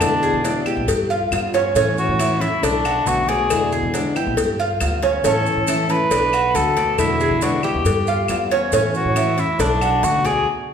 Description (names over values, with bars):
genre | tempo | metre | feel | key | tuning
latin, Cuban son and guajira | 138 BPM | 4/4 | straight | A major | A4 = 440 Hz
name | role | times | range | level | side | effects
mellow cor anglais | melody | 0.0-10.5 s | D4 to B4 | -20 LUFS | left 1 dB | none
flamenco guitar | accompaniment | 0.0-10.5 s | B2 to F#4 | -24 LUFS | left 3 dB | none
Cuban tres | arpeggios | 0.0-10.5 s | C#4 to D5 | -22 LUFS | right 3 dB | none
upright bass | bass | 0.0-10.4 s | B1 to E3 | -25 LUFS | equal | none
claves | percussion | 0.0-10.0 s | none | -32 LUFS | right 1 dB | none
cowbell | percussion | 0.0-10.5 s | none | -26 LUFS | left 4 dB | none
maracas | percussion | 0.0-10.5 s | none | -33 LUFS | right 6 dB | none
room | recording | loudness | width
wet recital hall reverb, RT60 1.4 s | recorded in a church or concert hall | -16 LUFS | side -7 dB against mid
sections
0.0-10.7 A section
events
band accent 10.5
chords
0.0 E7; 0.9 G7; 1.8 A; 2.6 Bm7; 3.5 E7; 4.4 G7; 5.2 A; 6.1 Bm7; 7.0 E7; 7.9 G7; 8.7 A; 9.6 Bm7